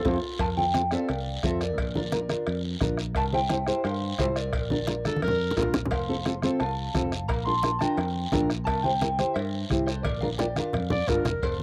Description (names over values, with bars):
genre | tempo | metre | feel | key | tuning
latin, cumbia | 174 BPM | 4/4 | straight | F major | A4 = 443 Hz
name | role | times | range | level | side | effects
breathy clarinet | second line | 0.0-0.4, 5.1-5.8, 10.9-11.4 s | F4 to D5 | -32 LUFS | equal | cassette tape, plate reverb
nylon-string guitar | accompaniment | 0.0-11.3 s | C4 to C5 | -31 LUFS | equal | cassette tape, plate reverb
timbales and cowbell | percussion | 0.0-11.6 s | none | -39 LUFS | equal | none
electric guitar at the edge of break-up | melody | 0.1-11.6 s | A4 to C6 | -33 LUFS | equal | spring reverb, cassette tape, plate reverb
fingered electric bass | bass | 0.1-11.6 s | F1 to G2 | -34 LUFS | equal | none
bombo | percussion | 0.1-11.6 s | none | -36 LUFS | equal | none
congas | percussion | 0.1-11.6 s | none | -34 LUFS | equal | none
guiro | percussion | 0.1-11.6 s | none | -42 LUFS | equal | none
room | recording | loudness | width
moderate booth ambience, RT60 0.2 s | home recording on cassette | -27 LUFS | mono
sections
0.4-11.4 A section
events
drum fill 0.0-0.4, 5.1-5.9, 10.1-11.4; band accent 0.0-0.4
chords
0.4 F; 1.8 Bb; 3.2 C; 4.5 Bb; 5.9 F; 7.3 Bb; 8.7 C; 10.1 Bb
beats
0.06 | 0.40 0.75 1.09 1.44 | 1.78 2.12 2.47 2.81 | 3.16 3.50 3.85 4.19 | 4.54 4.88 5.23 5.57 | 5.92 6.26 6.60 6.95 | 7.29 7.64 7.98 8.33 | 8.67 9.02 9.36 9.71 | 10.05 10.40 10.74 11.09 | 11.43